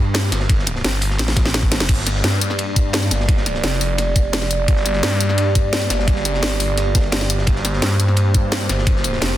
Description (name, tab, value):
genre	dark technical drum and bass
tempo	172 BPM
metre	4/4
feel	straight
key	G minor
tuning	A4 = 441 Hz
part	phased detuned saw bass	bass	0.0-9.4 s	F1 to G2	-20 LUFS	equal	phaser, tube saturation
part	crunchy breakbeat drum kit	drums	0.1-9.3 s	ride cymbal, snare drum	-29 LUFS	equal	high-pass filter on cymbals, studio ambience, high-pass filter on snare, high-pass filter on room
part	drum and bass drum kit	drums	0.1-9.3 s	crash cymbal, hi-hat, snare drum, tambourine	-22 LUFS	equal	studio ambience
part	electronic kick drum	drums	0.5-8.9 s	none	-16 LUFS	equal	studio ambience
part	dark analog pad	sustained chords	2.1-9.4 s	Bb3 to D5	-24 LUFS	right 2 dB	chorus, vintage 12-bit sampler grit, sidechain pumping
room	digital ambience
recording	dense, heavily limited modern master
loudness	-16 LUFS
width	side -13 dB against mid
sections	0.0-9.4 A section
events	drum fill 1.2-1.9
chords	0.0 Gm